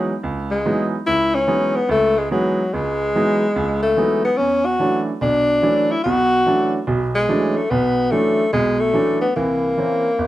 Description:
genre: jazz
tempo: 145 BPM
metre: 4/4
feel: swing 66% on 8ths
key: F# minor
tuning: A4 = 440 Hz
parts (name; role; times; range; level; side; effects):
- breathy tenor saxophone; melody; 0.0-10.3 s; F#3 to F#4; -18 LUFS; left 2 dB; none
- clear baby grand piano; accompaniment; 0.0-10.3 s; G1 to D#4; -20 LUFS; right 2 dB; none
room: moderate studio reverb, RT60 0.8 s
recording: none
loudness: -16 LUFS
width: side -14 dB against mid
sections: 0.0-10.3 A section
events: none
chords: 0.0 F#13sus4; 4.4 E13sus4; 9.4 C7b9

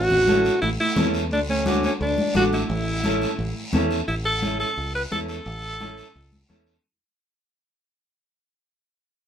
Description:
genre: latin, cumbia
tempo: 174 BPM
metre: 4/4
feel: straight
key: A major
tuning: A4 = 439 Hz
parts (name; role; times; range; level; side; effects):
- clear alto saxophone; melody; 0.0-6.5 s; C#4 to B4; -23 LUFS; equal; none
- mellow electric guitar; second line; 0.0-3.7 s; A3 to D4; -30 LUFS; right 4 dB; none
- fingered electric bass; bass; 0.0-6.8 s; A1 to E2; -28 LUFS; equal; none
- congas; percussion; 0.1-6.7 s; none; -27 LUFS; left 2 dB; none
- mellow electric guitar; accompaniment; 0.3-6.7 s; C#4 to A4; -27 LUFS; right 1 dB; none
- guiro; percussion; 0.3-6.8 s; none; -34 LUFS; left 1 dB; none
room: wet small room reverb, RT60 0.6 s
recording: minimal, uncompressed stereo recording, lossy compression artefacts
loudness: -20 LUFS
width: side -9 dB against mid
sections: 0.0-4.1 A section; 4.1-6.8 B section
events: fade-out 4.1-6.8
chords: 0.0 A; 1.3 D; 2.7 A

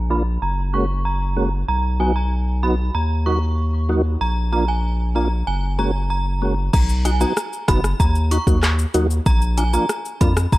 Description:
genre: dancehall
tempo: 95 BPM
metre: 4/4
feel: straight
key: Eb minor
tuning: A4 = 441 Hz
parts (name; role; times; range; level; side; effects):
- saturated sub bass; bass; 0.0-10.6 s; Gb1 to F2; -20 LUFS; equal; none
- synth chime; melody; 0.1-10.6 s; Ab5 to Db6; -25 LUFS; right 1 dB; ensemble chorus, low-pass filter, tape echo
- percussive tonewheel organ; accompaniment; 0.1-10.3 s; F3 to Gb4; -23 LUFS; right 1 dB; chorus vibrato, fast rotary speaker, low-pass filter
- afro-pop drum kit; drums; 6.7-10.6 s; crash cymbal, handclaps, hi-hat, kick drum, rim click, shaker; -19 LUFS; equal; none
room: digital ambience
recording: dark, warm production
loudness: -17 LUFS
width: side -18 dB against mid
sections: 0.0-6.7 A section; 6.7-10.6 B section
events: filter sweep 0.0-6.7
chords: 0.4 Gbadd9; 1.7 B; 2.9 Ebm; 4.2 Bb; 5.5 Gbadd9; 6.7 B; 8.0 Ebm; 9.3 Bb

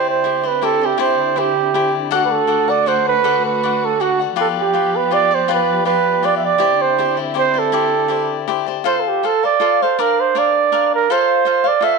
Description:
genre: mexican folk, mariachi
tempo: 161 BPM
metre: 3/4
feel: straight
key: C major, F major from 8.9 s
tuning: A4 = 440 Hz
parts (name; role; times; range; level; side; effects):
- dark trumpet; melody; 0.0-12.0 s; F#4 to E5; -16 LUFS; right 9 dB; none
- cavaquinho; accompaniment; 0.0-12.0 s; D4 to F#5; -20 LUFS; left 17 dB; none
- dark chamber string section; sustained chords; 0.0-8.8 s; D3 to G4; -26 LUFS; left 3 dB; none
room: light reverb, studio reverb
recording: 1960s-style stereo with parts hard left and right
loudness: -14 LUFS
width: side -4 dB against mid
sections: 0.0-8.9 A section; 8.9-12.0 B section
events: none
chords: 0.0 Cadd9; 2.1 D; 4.4 G7; 6.6 Cadd9; 8.9 F; 10.0 Bb; 11.1 F

